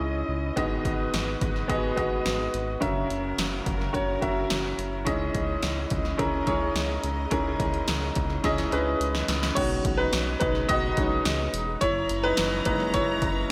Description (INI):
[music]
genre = piano-driven pop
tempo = 107 BPM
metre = 4/4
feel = straight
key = B major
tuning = A4 = 444 Hz
[part]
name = bright upright piano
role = accompaniment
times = 0.0-13.5 s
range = G#2 to E5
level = -29 LUFS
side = equal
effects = slapback echo
[part]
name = warm studio string section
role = sustained chords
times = 0.0-13.5 s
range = C#3 to A#5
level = -38 LUFS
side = equal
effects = none
[part]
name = round analog bass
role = bass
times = 0.0-13.5 s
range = E1 to C#2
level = -35 LUFS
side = equal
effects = none
[part]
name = punchy analog drum machine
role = drums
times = 0.6-13.4 s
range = crash cymbal, hi-hat, kick drum, snare drum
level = -32 LUFS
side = equal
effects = none
[sound]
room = moderate lush hall reverb, RT60 2.2 s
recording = big arena sound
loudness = -26 LUFS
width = mono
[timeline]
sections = 0.0-9.6 A section; 9.6-13.5 B section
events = drum fill 8.4-9.6; upright piano solo 9.6-13.5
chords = 0.0 C#madd9; 0.6 G#m7; 2.8 F#7; 5.1 C#madd9; 9.6 B6; 11.8 F#7